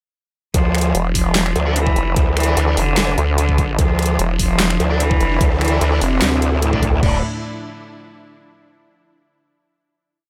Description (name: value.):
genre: heavy wobble dubstep.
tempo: 148 BPM.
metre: 4/4.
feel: half-time.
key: D minor.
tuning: A4 = 440 Hz.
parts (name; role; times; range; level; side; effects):
clear cello; melody; 0.5-7.2 s; A2 to F3; -24 LUFS; equal; digital delay.
growl bass; bass; 0.5-7.2 s; D1 to D2; -20 LUFS; equal; chorus, overdrive.
dubstep drum kit; drums; 0.5-7.1 s; crash cymbal, kick drum, toms; -21 LUFS; equal; studio reverb.
dubstep drum kit; drums; 0.5-6.9 s; finger snaps, handclaps, hi-hat, snare drum; -24 LUFS; equal; studio reverb.
vowel-sweep wobble bass; bass; 0.9-6.2 s; E1 to D2; -20 LUFS; equal; chorus, overdrive.
distorted electric guitar; stabs; 1.7-7.2 s; D4 to D5; -30 LUFS; equal; distortion, digital delay.
supersaw pad; sustained chords; 3.8-7.2 s; D3 to E4; -31 LUFS; equal; sidechain pumping.
room: little or no reverb.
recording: none.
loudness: -17 LUFS.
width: mono.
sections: 0.5-7.0 drop; 7.0-8.7 final chord.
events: drop 0.5-7.0.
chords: 0.5 Dmadd9; 7.0 N.C..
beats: | 0.54 0.95 1.35 1.76 | 2.17 2.57 2.98 3.38 | 3.79 4.19 4.60 5.00 | 5.41 5.81 6.22 6.62 | 7.03.